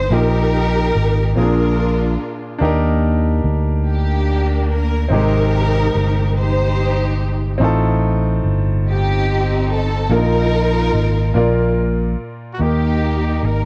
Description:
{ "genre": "gospel", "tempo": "48 BPM (dotted quarters)", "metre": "6/8", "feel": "straight", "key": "Eb major", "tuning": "A4 = 440 Hz", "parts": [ { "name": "warm studio string section", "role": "melody", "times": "0.0-13.7 s", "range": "Bb3 to C5", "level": "-24 LUFS", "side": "equal", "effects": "none" }, { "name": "clear grand piano", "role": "accompaniment", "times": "0.0-13.7 s", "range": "A2 to D5", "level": "-24 LUFS", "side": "equal", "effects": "none" }, { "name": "fingered electric bass", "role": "bass", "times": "0.0-13.7 s", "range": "G1 to Eb2", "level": "-19 LUFS", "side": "equal", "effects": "none" }, { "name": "clear trumpet", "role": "melody", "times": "12.5-13.7 s", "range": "Gb4 to Bb4", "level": "-29 LUFS", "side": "equal", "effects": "none" } ], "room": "light reverb, studio reverb", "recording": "dark, warm production", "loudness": "-17 LUFS", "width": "mono", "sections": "0.0-12.6 A section; 12.6-13.7 B section", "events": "none", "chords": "0.1 Eb/Bb; 1.4 Bb7; 2.6 Ebmaj7; 5.1 Abmaj7; 7.6 F7; 10.1 Bbsus4; 11.4 Bb; 12.6 Eb" }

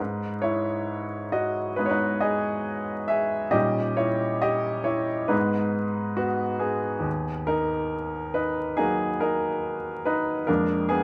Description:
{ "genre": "classical, romantic character piece for solo piano", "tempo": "69 BPM", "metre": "4/4", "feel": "rubato", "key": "G# minor", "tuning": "A4 = 440 Hz", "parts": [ { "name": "bright baby grand piano", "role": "solo", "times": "0.0-11.0 s", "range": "D#2 to E5", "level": "-26 LUFS", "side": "equal", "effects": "none" } ], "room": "moderate recital hall reverb, RT60 1.7 s", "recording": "close, detailed microphones, vinyl crackle", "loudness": "-26 LUFS", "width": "mono", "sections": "0.0-11.0 A section", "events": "none", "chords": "0.0 G#m; 3.5 D#7/A#; 5.3 G#m; 7.1 D#m; 10.5 A#7/E#" }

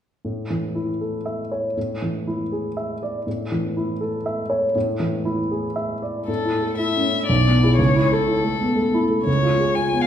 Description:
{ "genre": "quick classical-period movement for piano quartet", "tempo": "120 BPM", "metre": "3/4", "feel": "straight", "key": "A major", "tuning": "A4 = 440 Hz", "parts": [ { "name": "warm baby grand piano", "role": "accompaniment", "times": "0.2-10.1 s", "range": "B1 to E5", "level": "-20 LUFS", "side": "equal", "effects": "none" }, { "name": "rich violin", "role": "melody", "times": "6.3-10.1 s", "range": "A4 to G#5", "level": "-22 LUFS", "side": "left 4 dB", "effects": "none" } ], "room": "wet recital hall reverb, RT60 1.4 s", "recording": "heard from further back in the room", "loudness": "-19 LUFS", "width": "side -9 dB against mid", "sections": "0.2-6.3 A section; 6.3-10.1 B section", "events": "none", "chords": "0.2 A; 1.8 E7/A; 3.3 A; 4.7 E7/A; 6.3 A; 7.3 E7/B; 7.8 A/C#; 9.3 C#7" }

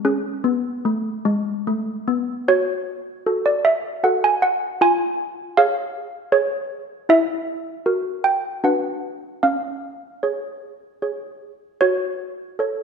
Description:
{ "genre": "classical, tune for handbells", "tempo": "77 BPM", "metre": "3/4", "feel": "straight", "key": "F# minor", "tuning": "A4 = 439 Hz", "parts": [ { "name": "malleted handbells", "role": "solo", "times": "0.0-12.8 s", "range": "G#3 to G#5", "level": "-19 LUFS", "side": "right 1 dB", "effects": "none" } ], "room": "wet scoring stage reverb, RT60 1.7 s", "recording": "none", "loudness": "-19 LUFS", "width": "side -6 dB against mid", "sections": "0.0-2.5 A section; 2.5-12.8 B section", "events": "none", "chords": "0.1 C#5; 2.5 F#m; 4.8 C#/E#; 7.1 F#7/E; 8.6 Bm/D; 9.4 C#; 11.8 F#m" }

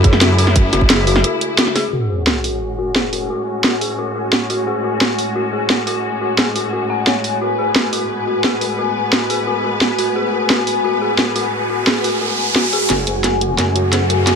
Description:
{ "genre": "dark technical drum and bass", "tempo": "175 BPM", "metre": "4/4", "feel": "straight", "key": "F# minor", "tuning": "A4 = 441 Hz", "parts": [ { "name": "rich studio string section", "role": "sustained chords", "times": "0.0-14.4 s", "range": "A2 to B4", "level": "-23 LUFS", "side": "left 1 dB", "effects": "sidechain pumping, low-pass filter" }, { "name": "dark detuned synth bell", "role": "arpeggios", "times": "0.0-14.4 s", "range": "F#4 to F#5", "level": "-22 LUFS", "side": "left 4 dB", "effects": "chorus, sidechain pumping, low-pass filter, digital delay" }, { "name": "snarling distorted saw bass", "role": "bass", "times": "0.0-1.2, 12.9-14.4 s", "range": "F#1 to F#2", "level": "-17 LUFS", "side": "right 1 dB", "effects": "distortion, overdrive, sidechain pumping" }, { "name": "drum and bass drum kit", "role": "drums", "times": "0.0-14.3 s", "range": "hi-hat, snare drum", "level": "-16 LUFS", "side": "right 1 dB", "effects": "none" }, { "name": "electronic kick drum", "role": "drums", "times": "0.0-0.9 s", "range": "none", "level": "-13 LUFS", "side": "right 1 dB", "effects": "none" }, { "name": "sub drop and riser", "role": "sound effects", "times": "1.9-3.3, 11.0-14.4 s", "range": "none", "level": "-23 LUFS", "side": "right 1 dB", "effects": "none" }, { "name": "ethereal airy pad", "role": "texture", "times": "2.9-14.4 s", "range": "F#4 to G#5", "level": "-22 LUFS", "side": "left 1 dB", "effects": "ensemble chorus, built-in reverb, sidechain pumping" } ], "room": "light reverb", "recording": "faint mains hum", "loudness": "-14 LUFS", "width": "side -6 dB against mid", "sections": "0.0-1.9 A section; 1.9-12.9 B section; 12.9-14.4 C section", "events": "drop 0.0-1.9; break 1.2-1.9; band accent 1.6; impact 1.9-3.3; filter sweep on string section 1.9-12.9, 12.9-14.4; filter sweep on synth bell 1.9-12.9, 12.9-14.4; riser 11.0-12.9, 12.9-14.4; build-up 12.9-14.4; drum fill 12.9-14.4", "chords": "0.0 F#madd9" }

